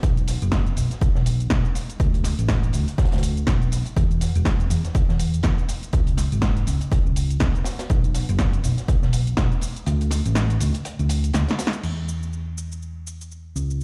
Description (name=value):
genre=piano house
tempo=122 BPM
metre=4/4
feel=swing 58% on 16ths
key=unclear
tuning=A4 = 435 Hz
part: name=hollow-body short-scale fingered electric bass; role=bass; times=0.0-13.8 s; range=E1 to E2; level=-25 LUFS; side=equal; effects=sidechain pumping, low-pass filter
part: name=crunchy breakbeat drum kit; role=drums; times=0.0-11.7 s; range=hi-hat, snare drum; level=-39 LUFS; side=equal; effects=sidechain pumping on hats, high-pass filter on hats, high-pass filter on snare, high-pass filter on room
part: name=electronic kick drum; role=drums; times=0.0-9.5 s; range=none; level=-24 LUFS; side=equal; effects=none
part: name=punchy analog drum machine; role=drums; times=0.0-13.8 s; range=cabasa, crash cymbal, hi-hat, snare drum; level=-32 LUFS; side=equal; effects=none
room=small room ambience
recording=played on a big sound system in a bare room, large studio reverb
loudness=-22 LUFS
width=mono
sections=0.0-11.8 A section; 11.8-13.8 B section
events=kick drops out 9.9-11.8; drum fill 11.3-11.8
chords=none